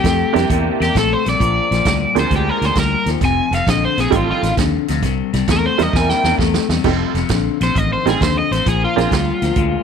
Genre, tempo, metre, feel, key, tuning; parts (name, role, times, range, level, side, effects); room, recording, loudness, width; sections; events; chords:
electric blues shuffle; 132 BPM; 4/4; swing 68% on 8ths; F mixolydian; A4 = 436 Hz
crunchy overdriven guitar; melody; 0.0-9.8 s; F4 to Ab5; -19 LUFS; equal
electric guitar through a small old amp; riff; 0.0-9.8 s; F2 to Bb3; -20 LUFS; left 16 dB; spring reverb
fingered electric bass; bass; 0.0-9.7 s; F1 to F2; -20 LUFS; right 1 dB
vintage drum kit; drums; 0.0-9.7 s; crash cymbal, hi-hat, kick drum, snare drum; -22 LUFS; right 4 dB
honky-tonk upright piano; accompaniment; 0.3-9.1 s; G3 to Bb4; -20 LUFS; right 15 dB
little or no reverb; 1960s-style stereo with parts hard left and right; -14 LUFS; side -7 dB against mid
0.0-6.8 A section; 6.8-9.8 B section
overdriven electric guitar solo 0.0-6.8; drum fill 5.9-6.8
0.0 C9; 1.4 Bb9; 3.2 F9; 5.0 C9; 6.8 F9; 8.7 Bb7